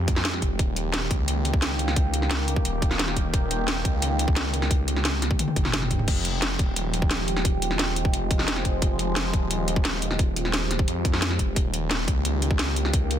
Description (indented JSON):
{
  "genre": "dark technical drum and bass",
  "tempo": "175 BPM",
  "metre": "4/4",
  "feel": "straight",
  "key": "F minor",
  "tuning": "A4 = 441 Hz",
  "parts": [
    { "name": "sweeping resonant pad", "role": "sustained chords", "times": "0.0-13.2 s", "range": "Eb3 to G4", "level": "-31 LUFS", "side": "equal", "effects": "chorus, phaser, sidechain pumping" },
    { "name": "snarling distorted saw bass", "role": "bass", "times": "0.0-13.2 s", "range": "Eb1 to F2", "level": "-27 LUFS", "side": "equal", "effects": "overdrive, sidechain pumping" },
    { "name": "drum and bass drum kit", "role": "drums", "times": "0.1-13.2 s", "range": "crash cymbal, hi-hat, snare drum, toms", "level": "-26 LUFS", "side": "equal", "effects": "none" },
    { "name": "electronic kick drum", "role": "drums", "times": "0.1-13.0 s", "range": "none", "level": "-24 LUFS", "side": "equal", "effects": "none" }
  ],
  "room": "little or no reverb",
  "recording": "dense, heavily limited modern master",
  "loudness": "-22 LUFS",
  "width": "side -10 dB against mid",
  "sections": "0.0-13.2 A section",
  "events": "drum fill 5.4-6.1",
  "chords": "0.0 Fmadd9; 0.6 Eb; 6.1 Fmadd9; 11.6 Eb"
}